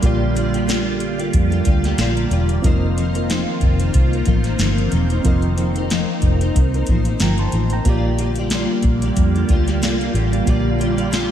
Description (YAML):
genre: indie pop, bedroom pop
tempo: 92 BPM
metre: 4/4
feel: swing 55% on 16ths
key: Bb major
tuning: A4 = 437 Hz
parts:
  - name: picked steel-string acoustic guitar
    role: accompaniment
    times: 0.0-11.3 s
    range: F3 to D5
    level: -24 LUFS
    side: left 3 dB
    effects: ensemble chorus, warbly pitch drift
  - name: reed electric piano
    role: accompaniment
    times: 0.0-11.3 s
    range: Bb3 to C6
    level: -28 LUFS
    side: right 4 dB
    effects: fast tremolo
  - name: phased analog pad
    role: sustained chords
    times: 0.0-11.3 s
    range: D3 to F4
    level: -23 LUFS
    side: right 2 dB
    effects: phaser, chorus
  - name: vintage muted fingered electric bass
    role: bass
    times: 0.0-11.3 s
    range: E1 to F2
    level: -20 LUFS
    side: equal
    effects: none
  - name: soft vintage rhythm box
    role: drums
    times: 0.0-11.3 s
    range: hi-hat, kick drum, snare drum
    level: -20 LUFS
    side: equal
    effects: overdrive
room: light reverb, digital ambience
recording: lossy compression artefacts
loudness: -16 LUFS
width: side -10 dB against mid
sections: 0.0-11.3 A section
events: none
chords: 0.0 Bb6; 2.6 F7sus4; 7.9 Bb6